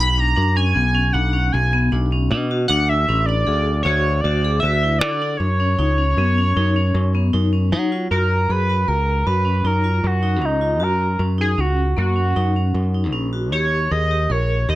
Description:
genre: progressive instrumental, band music in an uneven meter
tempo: 155 BPM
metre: 7/4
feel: straight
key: F# major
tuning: A4 = 440 Hz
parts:
  - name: sync lead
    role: melody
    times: 0.0-14.8 s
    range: D#4 to B5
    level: -21 LUFS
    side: equal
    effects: chorus
  - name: modern bright picked electric bass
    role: bass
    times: 0.0-14.8 s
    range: A1 to F#3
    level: -19 LUFS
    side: equal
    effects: none
  - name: vibraphone with hard mallets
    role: arpeggios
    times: 0.2-14.8 s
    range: A#3 to A#4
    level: -25 LUFS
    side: left 1 dB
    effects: ping-pong delay
room: light reverb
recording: none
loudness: -16 LUFS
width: side -16 dB against mid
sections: 0.0-8.1 A section; 8.1-14.8 B section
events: none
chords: 0.0 Bm; 2.7 D; 5.4 F#5; 8.1 F#; 13.5 D#

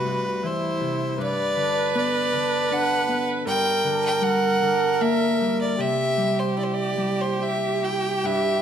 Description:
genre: celtic folk, Celtic slow air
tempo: 70-80 BPM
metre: 3/4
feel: rubato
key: unclear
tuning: A4 = 440 Hz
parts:
  - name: clear fiddle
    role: melody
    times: 0.0-8.6 s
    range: B4 to G5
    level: -25 LUFS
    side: left 2 dB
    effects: none
  - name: rich viola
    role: second line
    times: 0.0-8.6 s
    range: E4 to B4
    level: -25 LUFS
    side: right 4 dB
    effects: none
  - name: Celtic harp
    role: accompaniment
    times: 0.0-8.6 s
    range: C2 to G4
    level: -27 LUFS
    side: left 2 dB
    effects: none
room: moderate recital hall reverb, RT60 1.3 s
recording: none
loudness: -20 LUFS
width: side -8 dB against mid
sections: 0.0-8.6 A section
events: none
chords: 0.0 C; 1.2 G; 3.5 Gm; 5.8 C

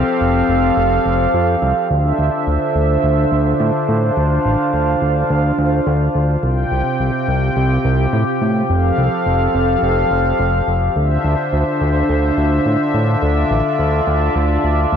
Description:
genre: synthwave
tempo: 106 BPM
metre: 4/4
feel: straight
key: D minor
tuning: A4 = 440 Hz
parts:
  - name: warm analog pad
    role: sustained chords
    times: 0.0-15.0 s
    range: C3 to G5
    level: -16 LUFS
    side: equal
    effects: chorus
  - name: fat analog bass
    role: bass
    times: 0.0-15.0 s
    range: F1 to A2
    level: -17 LUFS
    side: equal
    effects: none
room: wet lush hall reverb, RT60 2.5 s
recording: bright 1980s-style digital production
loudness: -14 LUFS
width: side -8 dB against mid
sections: 0.0-15.0 A section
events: none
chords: 0.0 Fadd9; 1.9 Dm7; 6.4 Csus4; 8.7 Fadd9; 11.0 Dm7

